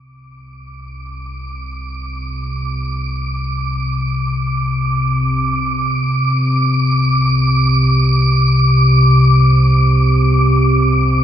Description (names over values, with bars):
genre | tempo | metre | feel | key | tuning
ambient | free time | none | none | unclear | A4 = 439 Hz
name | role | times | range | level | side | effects
warm sub bass | bass | 0.0-11.2 s | C2 | -23 LUFS | equal | tube saturation
analog drone | drone | 2.1-11.2 s | C3 | -14 LUFS | equal | chorus
wind-like tuned noise texture | texture | 1.0-11.2 s | D6 | -20 LUFS | right 1 dB | built-in reverb
room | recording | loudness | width
moderate huge ambient reverb, RT60 7.4 s | none | -12 LUFS | side -10 dB against mid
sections
0.0-11.2 A section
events
fade-in on sub bass 0.0-11.2; fade-in on synth texture 0.0-11.2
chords
0.0 Csus2